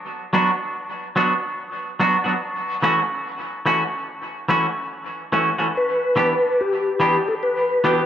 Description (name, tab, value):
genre	reggae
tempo	72 BPM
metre	4/4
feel	swing 61% on 16ths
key	unclear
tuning	A4 = 440 Hz
part	semi-hollow electric guitar	accompaniment	0.3-8.0 s	E3 to G4	-20 LUFS	equal	dub echo
part	mellow tonewheel organ	melody	5.8-8.1 s	F#4 to B4	-19 LUFS	left 1 dB	chorus vibrato, slow rotary speaker, dub echo
room	wet spring reverb, RT60 1.9 s, digital ambience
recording	none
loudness	-19 LUFS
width	side -10 dB against mid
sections	0.0-8.1 A section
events	break 0.0-5.7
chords	0.0 F#sus4; 2.4 F#m7; 5.7 Em7